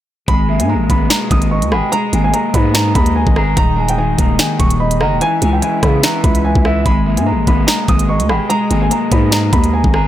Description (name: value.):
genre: hip hop, drill.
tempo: 146 BPM.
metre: 4/4.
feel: half-time.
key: G# minor.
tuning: A4 = 438 Hz.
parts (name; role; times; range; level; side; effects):
dark baby grand piano; melody; 0.3-10.1 s; E5 to D#6; -20 LUFS; right 1 dB; digital delay.
electric guitar at the edge of break-up; accompaniment; 0.3-10.1 s; D#3 to D#5; -19 LUFS; left 1 dB; none.
clear woodwind section; sustained chords; 0.3-10.1 s; B2 to E5; -27 LUFS; left 1 dB; none.
growling 808-style bass; bass; 0.3-10.1 s; D#1 to C#3; -16 LUFS; equal; none.
drill drum kit; drums; 0.3-10.0 s; finger snaps, hi-hat, kick drum, rim click, snare drum; -15 LUFS; equal; none.
gliding portamento lead; second line; 0.5-10.1 s; D#5 to A#5; -26 LUFS; right 4 dB; chorus, digital delay.
room: digital ambience.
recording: none.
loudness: -12 LUFS.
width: side -12 dB against mid.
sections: 0.3-10.1 A section.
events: none.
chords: 0.3 G#madd9; 3.6 D#sus4; 5.2 C#m7; 6.9 G#madd9.